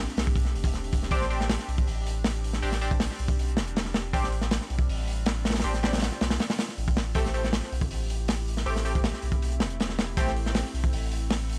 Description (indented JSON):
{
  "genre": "drum and bass, jungle",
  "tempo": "159 BPM",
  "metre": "4/4",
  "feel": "straight",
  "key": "A minor",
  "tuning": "A4 = 442 Hz",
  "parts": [
    { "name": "warbly tape-like pad", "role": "sustained chords", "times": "0.0-11.6 s", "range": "G3 to A4", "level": "-42 LUFS", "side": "equal", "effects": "chorus, built-in reverb, phaser" },
    { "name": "saturated sub bass", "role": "bass", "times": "0.0-11.6 s", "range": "E1 to B1", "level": "-32 LUFS", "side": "equal", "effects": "tube saturation" },
    { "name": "crunchy breakbeat drum kit", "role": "drums", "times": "0.1-11.6 s", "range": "hi-hat, kick drum, snare drum", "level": "-30 LUFS", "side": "equal", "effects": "none" },
    { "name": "band-passed chord stab", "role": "stabs", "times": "1.1-10.3 s", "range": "A3 to G4", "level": "-36 LUFS", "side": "equal", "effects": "chorus, phaser, dub echo" }
  ],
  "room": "small room ambience",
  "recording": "dry, gritty hardware recording",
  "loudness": "-28 LUFS",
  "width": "mono",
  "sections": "0.0-11.6 A section",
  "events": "none",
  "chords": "0.0 Am7; 1.1 Gsus4; 7.2 Am7",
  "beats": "0.36 0.74 | 1.11 1.49 1.87 2.25 | 2.62 3.00 3.38 3.76 | 4.13 4.51 4.89 5.27 | 5.64 6.02 6.40 6.78 | 7.15 7.53 7.91 8.29 | 8.66 9.04 9.42 9.79 | 10.17 10.55 10.93 11.30"
}